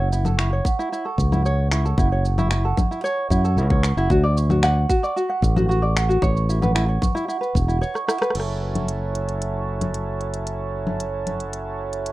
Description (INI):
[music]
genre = folktronica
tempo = 113 BPM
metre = 4/4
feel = straight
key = F# minor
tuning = A4 = 440 Hz
[part]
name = large celesta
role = second line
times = 0.0-8.4 s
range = F#5 to C#6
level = -28 LUFS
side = right 5 dB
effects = digital delay
[part]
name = tenor ukulele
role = arpeggios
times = 0.0-8.3 s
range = E4 to F#5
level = -25 LUFS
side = left 1 dB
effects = tape echo
[part]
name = fingered electric bass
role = bass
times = 0.0-12.1 s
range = E1 to F#2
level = -21 LUFS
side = equal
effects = tube saturation
[part]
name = organic electronic drum kit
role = drums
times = 0.1-12.1 s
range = congas, crash cymbal, finger snaps, hi-hat, rim click, shaker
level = -26 LUFS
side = left 2 dB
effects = none
[part]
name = electronic kick drum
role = drums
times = 0.6-7.7 s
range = none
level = -22 LUFS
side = equal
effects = none
[part]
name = mellow accordion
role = sustained chords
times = 8.4-12.1 s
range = F#3 to A4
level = -28 LUFS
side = right 4 dB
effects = low-pass filter
[sound]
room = light reverb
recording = rough home demo mix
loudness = -19 LUFS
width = side -17 dB against mid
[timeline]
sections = 0.0-8.3 A section; 8.3-12.1 B section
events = drum fill 8.0-8.3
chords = 0.0 F#m7; 4.1 D; 6.2 Aadd9; 8.3 F#m7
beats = 0.39 0.92 1.45 | 1.98 2.51 3.04 3.57 | 4.10 4.63 5.16 5.70 | 6.23 6.76 7.29 7.82 | 8.35 8.88 9.41 9.94 | 10.47 11.01 11.54 12.07